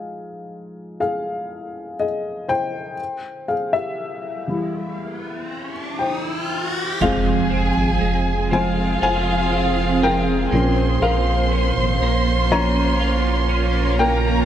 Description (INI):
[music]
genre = pop ballad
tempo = 60 BPM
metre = 4/4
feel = straight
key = F minor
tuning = A4 = 444 Hz
[part]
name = dark upright piano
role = accompaniment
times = 0.0-14.4 s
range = E3 to Bb5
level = -23 LUFS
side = left 2 dB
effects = none
[part]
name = riser and impact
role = sound effects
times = 4.4-11.0 s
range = none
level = -28 LUFS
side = equal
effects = none
[part]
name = dark studio violin section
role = second line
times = 7.0-14.4 s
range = F4 to C6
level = -24 LUFS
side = right 1 dB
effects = none
[part]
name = granular cloud pad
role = sustained chords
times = 8.3-14.4 s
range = F3 to Ab4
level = -25 LUFS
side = right 2 dB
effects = built-in reverb
[part]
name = twelve-string electric guitar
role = arpeggios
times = 7.0-14.4 s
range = F2 to F4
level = -25 LUFS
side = right 5 dB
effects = ensemble chorus
[part]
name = warm sub bass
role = bass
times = 7.0-14.4 s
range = F1 to Bb1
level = -22 LUFS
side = equal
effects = none
[sound]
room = light reverb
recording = none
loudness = -18 LUFS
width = side -10 dB against mid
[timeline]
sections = 0.0-7.0 A section; 7.0-14.4 B section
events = upright piano solo 0.0-7.0, 7.0-14.4; riser 4.4-7.0; impact 7.0-11.0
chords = 0.0 Fm7; 3.0 C; 7.0 Fm; 10.5 Bbm